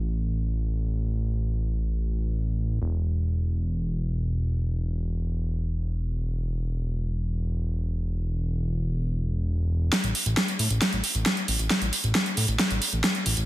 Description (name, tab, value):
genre	uplifting trance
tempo	135 BPM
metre	4/4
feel	straight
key	unclear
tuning	A4 = 441 Hz
part	fat analog bass	bass	0.0-13.5 s	E1 to A2	-25 LUFS	equal	none
part	big-room dance drum kit	drums	9.9-13.5 s	hi-hat, snare drum	-23 LUFS	equal	none
room	little or no reverb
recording	dense, heavily limited modern master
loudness	-24 LUFS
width	side -16 dB against mid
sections	0.0-9.9 A section; 9.9-13.5 B section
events	build-up 9.9-13.5; drum fill 9.9-13.5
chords	none